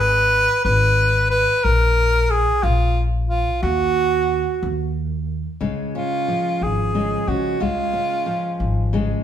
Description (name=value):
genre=indie folk with a building arrangement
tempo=60 BPM (dotted quarters)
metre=6/8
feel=straight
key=unclear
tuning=A4 = 440 Hz
part: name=clear tenor saxophone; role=melody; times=0.0-8.9 s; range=F4 to Cb5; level=-19 LUFS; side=right 1 dB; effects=none
part: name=upright bass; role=bass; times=0.0-9.1 s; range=Ab1 to Db3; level=-21 LUFS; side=left 1 dB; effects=none
part: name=fingerpicked steel-string acoustic guitar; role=accompaniment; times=5.6-9.2 s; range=Db3 to Db4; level=-24 LUFS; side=left 3 dB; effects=none
room=moderate large studio reverb, RT60 1.1 s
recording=band playing live in one room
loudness=-17 LUFS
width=side -9 dB against mid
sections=0.0-5.6 A section; 5.6-9.2 B section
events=none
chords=0.0 Abm; 1.6 Bb5; 3.6 Ebm; 5.6 Db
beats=0.65 | 1.64 2.63 | 3.63 4.62 | 5.62 6.61 | 7.61 8.61